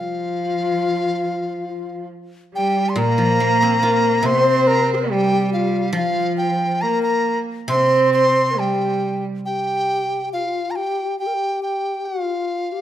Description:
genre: chinese traditional, Chinese chamber ensemble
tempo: 70 BPM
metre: 4/4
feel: straight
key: unclear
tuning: A4 = 440 Hz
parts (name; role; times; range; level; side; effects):
- reedy large dizi; melody; 0.0-12.8 s; G4 to C6; -22 LUFS; right 1 dB; none
- mellow low xiao; second line; 0.0-12.8 s; F4 to C5; -22 LUFS; left 4 dB; none
- rich cello; second line; 0.0-9.2 s; F3 to C4; -22 LUFS; right 4 dB; none
- guzheng; accompaniment; 0.0-10.3 s; Bb2 to F4; -24 LUFS; right 1 dB; none
room: moderate recital hall reverb, RT60 1.6 s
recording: none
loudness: -17 LUFS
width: side -11 dB against mid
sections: 0.0-9.5 A section; 9.5-12.8 B section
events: none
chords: none

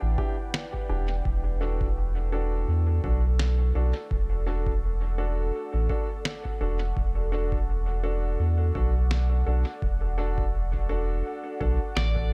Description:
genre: ambient dub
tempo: 84 BPM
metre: 4/4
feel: swing 56% on 16ths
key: unclear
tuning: A4 = 440 Hz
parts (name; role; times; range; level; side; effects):
- deep dark ambient pad; sustained chords; 0.0-12.3 s; E4 to G5; -41 LUFS; equal; chorus, built-in reverb
- warm upright piano; stabs; 0.0-11.8 s; D4 to A4; -37 LUFS; equal; dub echo
- warm sub bass; bass; 0.0-12.3 s; E1 to E2; -27 LUFS; equal; none
- electronic kick drum; drums; 0.2-12.3 s; none; -34 LUFS; equal; overdrive, studio reverb
- electronic snare drum; drums; 0.5-12.1 s; none; -37 LUFS; equal; studio reverb, dub echo
- electric slide guitar; melody; 12.0-12.3 s; D5; -35 LUFS; equal; dub echo
room: little or no reverb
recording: echo-heavy mix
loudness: -27 LUFS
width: mono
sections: 0.0-12.3 A section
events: none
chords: 0.0 Em7; 1.3 D/E

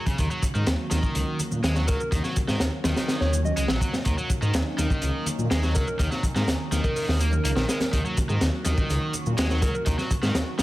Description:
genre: breakbeat, breaks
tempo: 124 BPM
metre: 4/4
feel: straight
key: Eb minor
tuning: A4 = 437 Hz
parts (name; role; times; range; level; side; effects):
- phased analog pad; sustained chords; 0.0-10.6 s; Eb3 to Ab4; -34 LUFS; right 1 dB; phaser, chorus, sidechain pumping
- cranked stack guitar; riff; 0.0-10.6 s; Db3 to Bb3; -31 LUFS; equal; overdrive, vintage 12-bit sampler grit, tape echo
- crunchy breakbeat drum kit; drums; 0.1-10.6 s; hi-hat, kick drum, snare drum; -26 LUFS; equal; none
- shaker; drums; 0.1-10.6 s; none; -37 LUFS; right 1 dB; none
- congas; percussion; 0.1-10.6 s; none; -36 LUFS; left 3 dB; none
- detuned saw bass; bass; 0.2-10.6 s; Bb1 to Bb2; -26 LUFS; equal; none
- soft struck synth lead; melody; 1.9-9.8 s; Bb4 to Eb5; -34 LUFS; equal; chorus, old record sound, tape echo
room: studio reverb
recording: none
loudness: -22 LUFS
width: side -17 dB against mid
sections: 0.0-10.6 A section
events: none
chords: 0.0 Ebm7

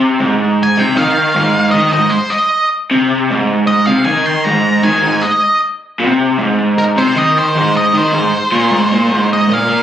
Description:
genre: rock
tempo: 155 BPM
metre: 4/4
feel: straight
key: Ab major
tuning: A4 = 440 Hz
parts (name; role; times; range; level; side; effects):
- raw garage guitar; riff; 0.0-9.8 s; Ab2 to Bb3; -12 LUFS; equal; overdrive
- octave-fuzz lead guitar; melody; 0.6-9.8 s; Bb4 to C6; -14 LUFS; equal; distortion, slapback echo
room: moderate spring reverb, RT60 1.4 s, digital ambience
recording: recorded on a phone in the room, club reverb, compression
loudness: -11 LUFS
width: side -10 dB against mid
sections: 0.0-9.5 A section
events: none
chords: 0.0 Ab

